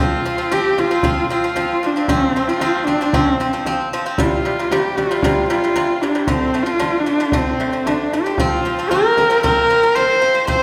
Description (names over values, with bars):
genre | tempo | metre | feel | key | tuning
mongolian traditional, Mongolian folk | 114 BPM | 4/4 | straight | F zhi mode | A4 = 439 Hz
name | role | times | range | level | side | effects
rich horsehead fiddle | melody | 0.0-10.6 s | C4 to C5 | -19 LUFS | equal | none
pipa | arpeggios | 0.0-10.6 s | C3 to C4 | -24 LUFS | equal | none
frame drum | percussion | 0.3-10.6 s | none | -26 LUFS | equal | none
room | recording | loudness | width
wet recital hall reverb, RT60 1.3 s | recorded in a church or concert hall | -17 LUFS | mono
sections
0.0-10.6 A section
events
none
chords
0.0 F5; 4.2 C5; 6.3 D5; 8.4 F5